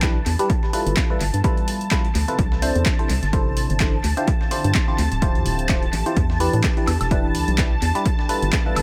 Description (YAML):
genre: piano house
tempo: 127 BPM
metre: 4/4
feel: swing 56% on 16ths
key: unclear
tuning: A4 = 440 Hz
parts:
  - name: analog string pad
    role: sustained chords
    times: 0.0-8.8 s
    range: A5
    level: -32 LUFS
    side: equal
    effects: ensemble chorus, sidechain pumping
  - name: barking FM electric piano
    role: riff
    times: 0.0-8.8 s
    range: C3 to C5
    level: -28 LUFS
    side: equal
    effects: phaser, cassette tape, sidechain pumping, analog delay
  - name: organ-like FM bass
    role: bass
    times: 0.0-8.8 s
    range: D1 to A2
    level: -25 LUFS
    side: equal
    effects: sidechain pumping
  - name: dusty soul sampler-style drum kit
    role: drums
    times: 0.0-8.8 s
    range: hi-hat, snare drum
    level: -40 LUFS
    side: equal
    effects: none
  - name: electronic kick drum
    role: drums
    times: 0.0-8.6 s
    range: none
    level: -23 LUFS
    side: equal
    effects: overdrive
  - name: punchy analog drum machine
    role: drums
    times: 0.0-8.8 s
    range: handclaps, hi-hat, woodblock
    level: -30 LUFS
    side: equal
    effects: overdrive, analog delay
  - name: warbly tape-like pad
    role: texture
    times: 0.0-8.8 s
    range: F3 to G5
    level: -38 LUFS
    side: equal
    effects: none
room: little or no reverb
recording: echo-heavy mix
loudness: -20 LUFS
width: mono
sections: 0.0-8.8 A section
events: none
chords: 0.5 G13; 2.4 C69; 4.0 Dm11; 6.2 Em7; 8.1 G13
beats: 0.02 | 0.50 0.97 1.44 1.91 | 2.39 2.86 3.33 3.80 | 4.28 4.75 5.22 5.69 | 6.17 6.64 7.11 7.58 | 8.05 8.53